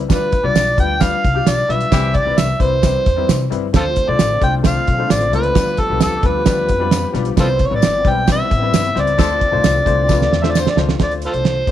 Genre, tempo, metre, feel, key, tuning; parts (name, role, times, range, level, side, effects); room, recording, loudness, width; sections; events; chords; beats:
uptempo 1960s-style soul; 132 BPM; 4/4; straight; D dorian; A4 = 440 Hz
upright bass; bass; 0.0-11.7 s; G1 to C3; -21 LUFS; left 1 dB
overdriven harmonica; melody; 0.1-11.7 s; F4 to G5; -18 LUFS; equal
clear upright piano; accompaniment; 0.1-11.7 s; G3 to C5; -24 LUFS; left 11 dB
cloth-damped thuddy drum kit; drums; 0.1-11.7 s; hi-hat, kick drum, snare drum; -17 LUFS; right 2 dB
tambourine; percussion; 0.1-10.7 s; -32 LUFS; left 16 dB
clear horn section; second line; 1.9-2.2, 9.2-9.5 s; E3 to A4; -27 LUFS; left 4 dB
bright tonewheel organ; sustained chords; 3.7-11.0 s; D3 to G4; -28 LUFS; left 1 dB; slow rotary speaker, chorus vibrato
light reverb, studio reverb; 1960s-style stereo; -13 LUFS; side -11 dB against mid
0.0-11.0 A section
band accent 1.9-3.7, 9.2-11.0; drum fill 10.1-11.0
0.1 G7; 1.9 Cmaj7; 3.7 Dm7; 5.6 G7; 7.4 Cmaj7; 9.2 Dm7
| 0.10 0.55 1.01 1.46 | 1.92 2.37 2.83 3.28 | 3.74 4.19 4.65 5.10 | 5.55 6.01 6.46 6.92 | 7.37 7.82 8.28 8.73 | 9.18 9.64 10.09 10.54 | 10.99 11.45